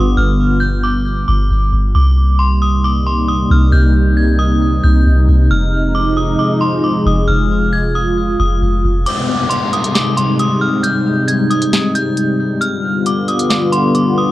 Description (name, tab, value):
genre	hip hop, atmospheric cloud-rap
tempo	135 BPM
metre	4/4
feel	half-time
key	unclear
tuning	A4 = 441 Hz
part	metallic FM bell	melody	0.0-14.3 s	C6 to Ab6	-19 LUFS	equal	chorus, low-pass filter, ping-pong delay
part	dark analog pad	sustained chords	0.0-14.3 s	C3 to F4	-16 LUFS	equal	chorus
part	soft 808-style bass	bass	0.0-9.1 s	F1 to C2	-13 LUFS	equal	none
part	trap drum kit	drums	9.1-14.1 s	hi-hat, snare drum	-18 LUFS	equal	overdrive
part	downlifter	sound effects	9.1-12.6 s	none	-22 LUFS	left 2 dB	none
room	little or no reverb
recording	worn, warbling old tape, cassette tape, warbly pitch drift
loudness	-12 LUFS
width	side -16 dB against mid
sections	0.0-9.1 A section; 9.1-14.3 B section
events	kick muted 9.1-14.3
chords	0.0 G7; 1.9 Cm7; 5.5 Fm7; 9.1 Abmaj7; 12.6 G7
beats	| 0.17 0.62 1.06 1.51 | 1.95 2.40 2.84 3.28 | 3.73 4.17 4.62 5.06 | 5.51 5.95 6.39 6.84 | 7.28 7.73 8.17 8.62 | 9.06 9.51 9.95 10.39 | 10.84 11.28 11.73 12.17 | 12.62 13.06 13.51 13.95